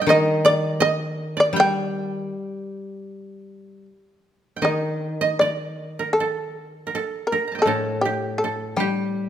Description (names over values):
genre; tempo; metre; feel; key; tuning
japanese traditional, Japanese chamber music; 74-84 BPM; 4/4; rubato; G hirajoshi; A4 = 440 Hz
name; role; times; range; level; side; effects
shamisen; melody; 0.0-9.3 s; G4 to G5; -21 LUFS; left 1 dB; none
koto; second line; 0.0-9.3 s; G4 to Bb5; -25 LUFS; right 6 dB; none
koto; accompaniment; 0.0-9.3 s; A2 to G3; -25 LUFS; left 2 dB; none
room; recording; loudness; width
moderate recital hall reverb, RT60 1.7 s; none; -20 LUFS; side -10 dB against mid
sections
0.0-4.7 A section; 4.7-9.3 B section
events
none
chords
none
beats
0.07 0.80 | 1.55 2.30 3.07 3.87 | 4.65 5.42 6.19 6.95 | 7.68 8.42 9.14